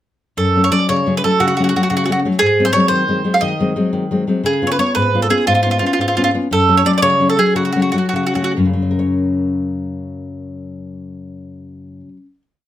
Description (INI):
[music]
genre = italian folk, Italian serenade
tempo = 88-120 BPM (dotted quarters)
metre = 6/8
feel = rubato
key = F# harmonic minor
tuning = A4 = 442 Hz
[part]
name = mandolin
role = melody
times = 0.4-8.5 s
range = E#4 to E#5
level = -15 LUFS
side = right 2 dB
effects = slapback echo
[part]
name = nylon-string guitar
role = accompaniment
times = 0.4-12.4 s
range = F#2 to C#5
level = -17 LUFS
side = left 2 dB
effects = none
[sound]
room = light reverb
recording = close, detailed microphones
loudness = -13 LUFS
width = side -12 dB against mid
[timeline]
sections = 0.4-8.8 A section; 8.8-11.4 final chord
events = slowing down 6.5-8.8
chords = 0.4 F#m; 2.4 G#7; 4.4 C#7; 6.5 F#m; 8.8 F#